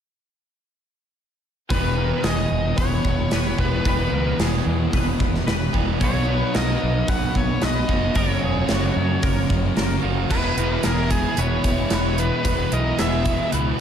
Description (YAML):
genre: rock, shoegaze and dream pop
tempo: 112 BPM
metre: 4/4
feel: straight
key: E lydian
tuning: A4 = 443 Hz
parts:
  - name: biting lead guitar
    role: melody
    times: 1.7-13.5 s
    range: G#4 to F#5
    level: -27 LUFS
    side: equal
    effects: overdrive, analog delay
  - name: twangy electric guitar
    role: arpeggios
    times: 1.7-13.8 s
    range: F#4 to C#5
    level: -31 LUFS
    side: left 1 dB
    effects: analog chorus, analog delay
  - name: crunchy overdriven guitar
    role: riff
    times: 1.7-13.8 s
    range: E2 to G#4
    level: -26 LUFS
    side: right 9 dB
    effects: reverse reverb
  - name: thick fuzz guitar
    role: riff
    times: 1.7-13.8 s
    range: E2 to B3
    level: -26 LUFS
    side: left 8 dB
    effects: distortion, wide subtle chorus
  - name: growling fingered electric bass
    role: bass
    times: 1.7-13.7 s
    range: E1 to F#2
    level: -25 LUFS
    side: equal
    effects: overdrive
  - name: gated 80s drum kit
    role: drums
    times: 1.7-13.7 s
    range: crash cymbal, hi-hat, kick drum, snare drum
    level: -24 LUFS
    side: equal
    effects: none
room: light reverb, studio reverb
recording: lossy compression artefacts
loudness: -19 LUFS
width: side -8 dB against mid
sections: 1.7-10.3 A section; 10.3-13.8 B section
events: none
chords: 1.7 E; 6.0 Badd9; 8.2 F#add9; 10.3 E